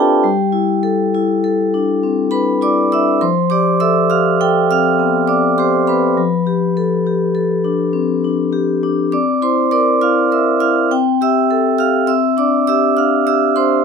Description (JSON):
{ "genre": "classical, contemporary piece for solo vibraphone", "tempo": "101 BPM", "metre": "5/4", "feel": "straight", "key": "unclear", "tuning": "A4 = 440 Hz", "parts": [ { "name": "vibraphone with medium hard mallets", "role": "solo", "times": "0.0-13.8 s", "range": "F3 to F6", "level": "-13 LUFS", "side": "left 1 dB", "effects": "none" } ], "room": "light reverb", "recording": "none", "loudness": "-13 LUFS", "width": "side -6 dB against mid", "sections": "0.0-13.8 A section", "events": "none", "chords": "0.2 G69; 3.2 Fadd9; 6.2 Gadd9/F; 9.1 C9; 10.9 Gsus2/C; 12.1 Cadd9", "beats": "| 0.23 0.83 1.42 2.02 2.61 | 3.21 3.81 4.41 5.00 5.59 | 6.18 6.78 7.36 7.94 8.53 | 9.12 9.71 10.30 10.89 11.49 | 12.09 12.68 13.27" }